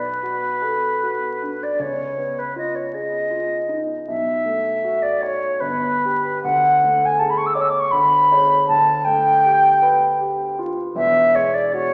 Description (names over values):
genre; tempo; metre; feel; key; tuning
classical, impressionist duo for flute and grand piano; 78 BPM; 3/4; rubato; unclear; A4 = 440 Hz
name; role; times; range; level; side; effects
mellow concert flute; melody; 0.0-11.9 s; B4 to E6; -20 LUFS; equal; none
dark grand piano; accompaniment; 0.0-11.9 s; E1 to C#5; -28 LUFS; equal; none
room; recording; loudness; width
wet recital hall reverb, RT60 1.5 s; recorded in a church or concert hall, vinyl crackle, small speaker sound; -19 LUFS; mono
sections
0.0-11.9 A section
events
none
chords
0.0 Bm7; 1.8 C#9; 4.1 B9sus4; 5.6 G; 6.4 D5; 7.9 Bsus2/D; 8.7 G9/D; 11.0 Eadd9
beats
0.23 1.03 | 1.81 2.57 3.32 | 4.08 4.83 5.60 | 6.43 7.18 7.92 | 8.69 9.43 10.20 | 10.96 11.73